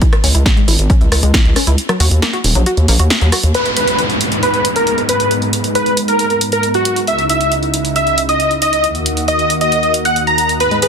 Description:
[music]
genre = uplifting trance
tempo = 136 BPM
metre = 4/4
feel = straight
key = G# minor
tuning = A4 = 440 Hz
[part]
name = analog pluck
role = arpeggios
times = 0.0-3.4, 10.7-10.9 s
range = F#3 to G#4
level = -22 LUFS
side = left 2 dB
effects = chorus, sidechain pumping, ping-pong delay
[part]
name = electronic kick drum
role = drums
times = 0.0-1.4 s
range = none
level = -12 LUFS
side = equal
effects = none
[part]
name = punchy analog drum machine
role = drums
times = 0.0-10.9 s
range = hi-hat, rim click, snare drum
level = -19 LUFS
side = right 1 dB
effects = sidechain pumping on hats
[part]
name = gritty driven synth bass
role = bass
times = 0.2-3.5 s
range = D#1 to D#2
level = -12 LUFS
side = equal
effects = sidechain pumping
[part]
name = dense compressed supersaw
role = melody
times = 3.5-10.9 s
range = F#4 to A#5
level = -14 LUFS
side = equal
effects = sidechain pumping, low-pass filter, ping-pong delay
[part]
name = lush unison pad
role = sustained chords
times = 3.5-10.9 s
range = C#2 to G#4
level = -20 LUFS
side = equal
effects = chorus, sidechain pumping
[part]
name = downlifter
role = sound effects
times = 3.5-7.1 s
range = none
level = -21 LUFS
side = equal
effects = none
[sound]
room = light reverb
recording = dense, heavily limited modern master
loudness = -11 LUFS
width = side -6 dB against mid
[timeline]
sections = 0.0-3.5 A section; 3.5-10.9 B section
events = filter sweep on synth arpeggio sound 0.0-3.5; kick drops out 1.8-3.5; filter sweep on supersaw synth 3.5-10.9; filter sweep on analog synth pad 3.5-10.9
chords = 0.0 C#m; 1.8 D#m; 3.5 G#m; 7.1 C#madd9; 8.8 D#m

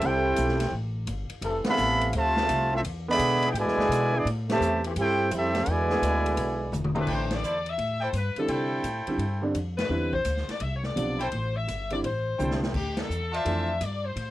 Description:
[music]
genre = jazz, big band swing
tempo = 170 BPM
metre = 4/4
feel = swing 65% on 8ths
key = A minor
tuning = A4 = 444 Hz
[part]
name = mellow trumpet section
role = melody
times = 0.0-6.7 s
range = B3 to B5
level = -25 LUFS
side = right 1 dB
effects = cassette tape
[part]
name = bright trombone section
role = second line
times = 0.0-6.7 s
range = B2 to G4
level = -29 LUFS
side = right 2 dB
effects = none
[part]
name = clear trombone section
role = sustained chords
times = 0.0-7.4 s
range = C3 to A4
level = -32 LUFS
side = left 2 dB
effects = none
[part]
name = upright bass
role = bass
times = 0.0-14.3 s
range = E1 to C3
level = -30 LUFS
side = equal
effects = none
[part]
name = swinging big-band drum kit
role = drums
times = 0.0-14.3 s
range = crash cymbal, hi-hat, kick drum, ride cymbal, snare drum, toms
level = -35 LUFS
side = left 1 dB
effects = cassette tape
[part]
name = edgy saxophone section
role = melody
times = 7.0-14.3 s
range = G4 to E5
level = -31 LUFS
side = left 3 dB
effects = cassette tape
[part]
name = warm trumpet section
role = stabs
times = 7.1-13.8 s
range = E4 to A5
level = -32 LUFS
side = right 1 dB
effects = none
[part]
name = warm baby grand piano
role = accompaniment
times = 8.4-13.7 s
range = C3 to F4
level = -30 LUFS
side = right 2 dB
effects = none
[sound]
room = light reverb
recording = home recording on cassette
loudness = -24 LUFS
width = side -15 dB against mid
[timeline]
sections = 0.0-7.1 A section; 7.1-14.3 B section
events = band accent 1.6, 4.4, 7.3, 9.7, 12.9; drum fill 6.7-7.1, 12.4-12.7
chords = 0.0 Am7; 1.4 Fmaj7; 2.8 E7; 4.3 Am7; 5.7 E7; 7.1 Am7; 12.7 Dm7

